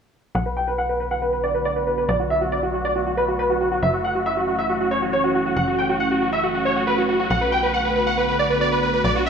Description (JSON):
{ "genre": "trance", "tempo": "138 BPM", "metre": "4/4", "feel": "straight", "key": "B minor", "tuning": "A4 = 435 Hz", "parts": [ { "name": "supersaw chords", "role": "melody", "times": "0.3-9.3 s", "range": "F#4 to G5", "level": "-21 LUFS", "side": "right 1 dB", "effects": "low-pass filter, dub echo" }, { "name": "clear baby grand piano", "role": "second line", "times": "0.3-9.3 s", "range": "F#4 to G5", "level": "-25 LUFS", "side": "equal", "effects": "low-pass filter, dub echo" }, { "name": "lush unison pad", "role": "sustained chords", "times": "1.2-9.3 s", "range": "D3 to F#4", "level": "-27 LUFS", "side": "equal", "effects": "chorus" }, { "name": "tight sequencer bass", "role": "bass", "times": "0.3-9.3 s", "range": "F#1 to B1", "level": "-30 LUFS", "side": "equal", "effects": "none" } ], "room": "moderate huge ambient reverb, RT60 6.1 s", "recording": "small room ambience", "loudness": "-19 LUFS", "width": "side -6 dB against mid", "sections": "0.3-9.3 A section", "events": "filter sweep on supersaw synth 0.3-9.3; filter sweep on grand piano 0.3-9.3", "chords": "0.3 Bm7; 3.8 F#m7; 7.3 Bm7", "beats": "| 0.35 0.78 1.22 1.65 | 2.09 2.52 2.96 3.39 | 3.83 4.26 4.70 5.13 | 5.57 6.00 6.43 6.87 | 7.30 7.74 8.17 8.61 | 9.04" }